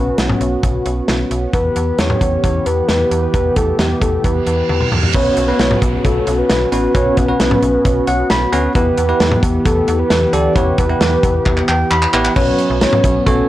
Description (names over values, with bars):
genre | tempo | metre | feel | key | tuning
synth-pop | 133 BPM | 4/4 | straight | unclear | A4 = 436 Hz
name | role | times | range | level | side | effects
soft octave-layered synth lead | melody | 0.0-13.5 s | G4 to D5 | -19 LUFS | equal | chorus
brassy analog pad | sustained chords | 0.0-13.5 s | E3 to G4 | -20 LUFS | equal | chorus
slap-like FM bass | bass | 0.0-13.4 s | A1 to E2 | -20 LUFS | equal | none
modern studio drum kit | drums | 0.2-13.4 s | crash cymbal, handclaps, hi-hat, kick drum, snare drum, toms | -17 LUFS | equal | none
reverse cymbal and downlifter | sound effects | 4.4-8.8 s | none | -26 LUFS | right 2 dB | none
bell-like tine electric piano | accompaniment | 5.1-13.5 s | B3 to B5 | -19 LUFS | right 1 dB | none
room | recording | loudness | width
small room ambience | dry, gritty hardware recording, cassette tape | -12 LUFS | side -14 dB against mid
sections
0.0-5.1 A section; 5.1-12.4 B section; 12.4-13.5 C section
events
reverse cymbal 4.4-5.1; drum fill 4.7-5.1, 11.5-12.4; tine electric piano fill 7.9-8.8, 11.5-12.4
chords
0.0 Bsus2; 1.5 Em; 5.1 Bsus2; 8.8 Em; 12.4 Bsus2